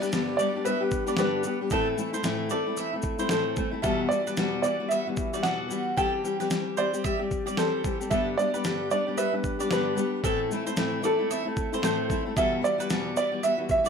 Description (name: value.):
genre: acoustic pop.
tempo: 113 BPM.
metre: 4/4.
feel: swing 60% on 16ths.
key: G major.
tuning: A4 = 440 Hz.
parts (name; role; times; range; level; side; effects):
warm upright piano; melody; 0.0-13.9 s; A4 to G5; -28 LUFS; right 1 dB; plate reverb.
fingerpicked steel-string acoustic guitar; accompaniment; 0.0-13.9 s; E2 to G4; -28 LUFS; left 3 dB; none.
mandolin; arpeggios; 0.0-13.9 s; A4 to E5; -34 LUFS; right 6 dB; none.
dusty soul sampler-style drum kit; drums; 0.0-13.9 s; kick drum, shaker, snare drum; -32 LUFS; equal; overdrive.
room: moderate studio reverb, RT60 0.6 s.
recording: none.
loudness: -24 LUFS.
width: side -6 dB against mid.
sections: 0.0-13.9 A section.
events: none.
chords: 0.0 G; 1.7 Am; 3.8 Emadd9; 6.0 C/E; 8.1 G; 10.2 Am; 12.4 Emadd9.